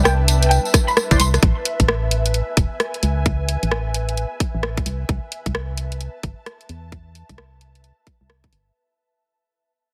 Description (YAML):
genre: UK garage, two-step garage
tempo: 131 BPM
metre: 4/4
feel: swing 62% on 16ths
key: unclear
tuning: A4 = 440 Hz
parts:
  - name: warm analog pad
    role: sustained chords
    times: 0.0-1.4 s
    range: G3 to E4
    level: -38 LUFS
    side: equal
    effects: chorus, sidechain pumping
  - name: organ-like FM bass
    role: bass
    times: 0.0-8.7 s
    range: E1 to E2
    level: -23 LUFS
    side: equal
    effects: none
  - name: ethereal airy pad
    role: texture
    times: 0.0-8.8 s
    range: B4 to A5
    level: -31 LUFS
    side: equal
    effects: ensemble chorus, built-in reverb, sidechain pumping
  - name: rich studio violin section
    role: melody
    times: 0.1-1.4 s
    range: G5 to C6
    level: -25 LUFS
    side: equal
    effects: digital delay
  - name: garage drum kit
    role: drums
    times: 0.1-8.6 s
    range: hi-hat, rim click, tambourine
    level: -23 LUFS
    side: equal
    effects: overdrive
  - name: electronic kick drum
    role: drums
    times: 0.7-8.5 s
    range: none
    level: -21 LUFS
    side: equal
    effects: overdrive
  - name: percussive organ stab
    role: stabs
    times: 1.1-1.2 s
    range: E4 to D5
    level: -31 LUFS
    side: equal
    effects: lush chorus, dub echo
room: light reverb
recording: heavily compressed radio sound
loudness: -20 LUFS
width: mono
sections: 0.0-1.4 A section; 1.4-8.8 B section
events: drop 0.0-1.4; fade-out 1.4-8.8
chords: 0.0 Cmaj9; 1.4 Amaj9; 4.9 Cmaj7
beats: 0.05 0.51 0.97 | 1.43 1.88 2.34 2.80 | 3.26 3.72 4.17 4.63 | 5.09 5.55 6.01 6.46 | 6.92 7.38 7.84 8.30